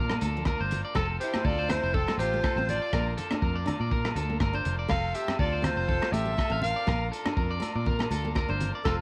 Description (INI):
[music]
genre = highlife guitar band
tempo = 122 BPM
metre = 4/4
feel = swing 55% on 16ths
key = unclear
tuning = A4 = 440 Hz
[part]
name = combo organ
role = sustained chords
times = 0.0-9.0 s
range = C4 to Bb4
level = -43 LUFS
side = equal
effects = none
[part]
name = electric guitar at the edge of break-up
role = arpeggios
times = 0.0-9.0 s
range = F4 to F5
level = -37 LUFS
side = equal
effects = none
[part]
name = fingered electric bass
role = bass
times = 0.0-9.0 s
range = F1 to Bb2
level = -33 LUFS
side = equal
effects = none
[part]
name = nylon-string guitar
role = accompaniment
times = 0.1-9.0 s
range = F3 to D4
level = -39 LUFS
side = equal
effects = none
[part]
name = crunchy breakbeat drum kit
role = drums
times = 0.1-9.0 s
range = hi-hat, kick drum, rim click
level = -34 LUFS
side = equal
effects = none
[part]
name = agogo bells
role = percussion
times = 0.1-9.0 s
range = none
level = -41 LUFS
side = equal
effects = none
[part]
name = congas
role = percussion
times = 0.2-8.7 s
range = none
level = -39 LUFS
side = equal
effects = none
[part]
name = clear clarinet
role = melody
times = 1.0-9.0 s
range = A4 to F5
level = -32 LUFS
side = equal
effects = none
[part]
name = clear soprano saxophone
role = second line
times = 1.0-9.0 s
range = C4 to Bb4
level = -42 LUFS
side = equal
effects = none
[sound]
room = studio reverb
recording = none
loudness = -28 LUFS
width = mono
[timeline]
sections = 0.0-9.0 A section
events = none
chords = 0.0 Bb; 1.0 F; 2.9 Bb; 4.9 F; 6.9 Bb